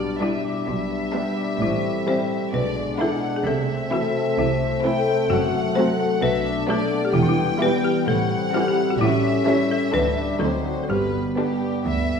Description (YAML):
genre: cinematic, playful, whimsical film cue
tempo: 129 BPM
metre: 4/4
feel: straight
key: unclear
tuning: A4 = 440 Hz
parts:
  - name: folk marimba with hard mallets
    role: melody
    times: 0.0-12.2 s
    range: D4 to C#5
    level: -26 LUFS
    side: left 3 dB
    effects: none
  - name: warm chamber violin section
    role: melody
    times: 0.0-12.2 s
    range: G4 to G5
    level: -28 LUFS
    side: left 3 dB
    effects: none
  - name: mellow French horn section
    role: sustained chords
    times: 0.0-12.2 s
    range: F#3 to D4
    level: -26 LUFS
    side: left 1 dB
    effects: none
  - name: concert harp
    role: arpeggios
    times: 0.0-12.2 s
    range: F#2 to G5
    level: -27 LUFS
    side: left 4 dB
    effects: none
  - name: dark chamber double bass section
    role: bass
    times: 0.0-12.2 s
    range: E1 to D2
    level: -29 LUFS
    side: right 5 dB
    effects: none
  - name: warm symphonic cello section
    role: bass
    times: 0.0-12.2 s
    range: D2 to C3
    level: -30 LUFS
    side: right 4 dB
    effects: none
  - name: warm chamber violin section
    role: second line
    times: 0.2-11.7 s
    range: A3 to E4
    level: -30 LUFS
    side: equal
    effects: none
  - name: dark chamber viola section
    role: accompaniment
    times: 0.2-11.7 s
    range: D3 to A3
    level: -29 LUFS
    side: right 2 dB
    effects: none
room: wet scoring stage reverb, RT60 1.6 s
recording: heard from further back in the room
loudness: -19 LUFS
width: side -6 dB against mid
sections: 0.0-12.2 A section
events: none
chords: 0.0 G/B; 1.6 Am7; 2.5 E7/B; 3.5 Am/C; 5.3 F#dim; 6.2 Bm7; 7.1 Em; 8.1 Am7; 9.0 A7; 9.9 G/D; 10.4 D7b9; 10.9 G